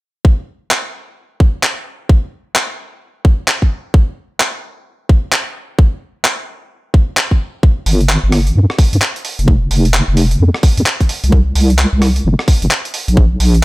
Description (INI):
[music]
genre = UK garage, two-step garage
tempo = 130 BPM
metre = 4/4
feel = swing 62% on 16ths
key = unclear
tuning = A4 = 442 Hz
[part]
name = electronic kick drum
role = drums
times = 0.2-13.3 s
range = none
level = -9 LUFS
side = equal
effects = studio reverb
[part]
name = breakbeat sampler-style drum kit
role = drums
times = 0.7-13.6 s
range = handclaps, hi-hat, rim click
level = -16 LUFS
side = equal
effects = studio reverb
[part]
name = deep soft wobble bass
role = bass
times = 7.9-13.6 s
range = F1 to G2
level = -11 LUFS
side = equal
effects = chorus, sidechain pumping
[sound]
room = digital ambience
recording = none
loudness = -12 LUFS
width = side -20 dB against mid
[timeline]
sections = 0.2-13.6 A section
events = none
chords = none